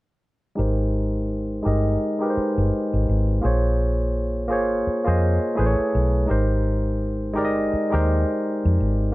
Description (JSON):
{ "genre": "R&B, neo-soul", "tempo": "84 BPM", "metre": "4/4", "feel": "swing 57% on 16ths", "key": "Ab major", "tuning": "A4 = 440 Hz", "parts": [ { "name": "barky tine electric piano", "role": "accompaniment", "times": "0.6-9.1 s", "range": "Ab3 to Eb5", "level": "-22 LUFS", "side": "equal", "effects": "overdrive, low-pass filter" }, { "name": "vintage muted fingered electric bass", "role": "bass", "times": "0.6-9.1 s", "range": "G1 to F2", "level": "-22 LUFS", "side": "equal", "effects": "none" } ], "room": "light reverb", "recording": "none", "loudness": "-20 LUFS", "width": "side -19 dB against mid", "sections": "0.6-9.1 A section", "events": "filter sweep on tine electric piano 0.6-9.1", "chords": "0.6 Abmaj9; 3.4 Bbm9; 5.6 Amaj9; 6.3 Abmaj9", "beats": "| 0.56 1.28 1.99 2.71 | 3.42 4.14 4.85 5.56 | 6.28 6.99 7.71 8.42 | 9.14" }